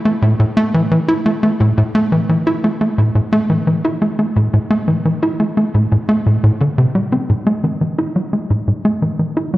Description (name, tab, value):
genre	ambient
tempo	87 BPM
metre	4/4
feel	straight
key	A minor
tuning	A4 = 440 Hz
part	tight sequencer bass	solo	0.1-9.6 s	A2 to E4	-13 LUFS	equal	tape echo
room	wet plate reverb, RT60 2.6 s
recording	worn, warbling old tape, cassette tape, warbly pitch drift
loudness	-13 LUFS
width	side -17 dB against mid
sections	0.0-9.6 A section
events	none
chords	none